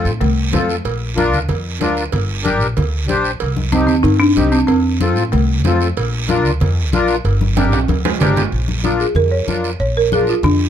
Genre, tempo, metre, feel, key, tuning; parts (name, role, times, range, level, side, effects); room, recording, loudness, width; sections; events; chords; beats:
latin, cumbia; 188 BPM; 4/4; straight; Bb major; A4 = 440 Hz
folk marimba with medium hard mallets; melody; 0.0-0.7, 3.7-5.8, 8.8-10.7 s; A3 to Db5; -17 LUFS; equal
accordion; accompaniment; 0.0-10.3 s; C4 to C5; -18 LUFS; left 3 dB; light tremolo tuning
upright bass; bass; 0.0-10.7 s; G1 to A2; -18 LUFS; equal
guiro; percussion; 0.1-10.7 s; -29 LUFS; right 7 dB
congas; percussion; 0.2-10.6 s; -22 LUFS; left 2 dB
cowbell and timbales; percussion; 0.2-8.4 s; -25 LUFS; right 9 dB
light reverb; dark, warm production; -14 LUFS; side -9 dB against mid
0.0-8.5 A section; 8.5-10.7 B section
drum fill 7.6-8.5; marimba solo 8.5-10.7
0.0 F; 0.9 Bb; 2.1 Gm; 3.4 Cm; 4.7 F; 6.0 Bb; 7.2 Gm; 8.5 Bb
0.21 0.53 | 0.85 1.17 1.49 1.81 | 2.13 2.45 2.77 3.09 | 3.41 3.73 4.05 4.37 | 4.69 5.01 5.33 5.65 | 5.97 6.29 6.61 6.93 | 7.25 7.57 7.89 8.21 | 8.53 8.84 9.16 9.48 | 9.80 10.12 10.44